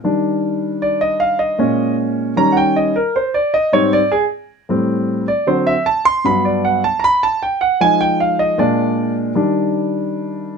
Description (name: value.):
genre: jazz.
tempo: 155 BPM.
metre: 4/4.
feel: straight.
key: Eb major.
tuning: A4 = 440 Hz.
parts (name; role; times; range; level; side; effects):
warm grand piano; solo; 0.0-10.6 s; G2 to C6; -14 LUFS; right 1 dB; none.
room: moderate club reverb, RT60 0.5 s.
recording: none.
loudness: -14 LUFS.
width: side -5 dB against mid.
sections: 0.0-10.6 A section.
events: grand piano solo 0.0-10.6.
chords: 0.0 Ebmaj7; 1.6 Bbm7; 2.4 Eb7; 3.1 Abmaj7; 4.7 Am7; 5.5 D7; 6.3 Gmaj7; 7.8 Fm7; 8.6 Bb7; 9.4 Ebmaj7.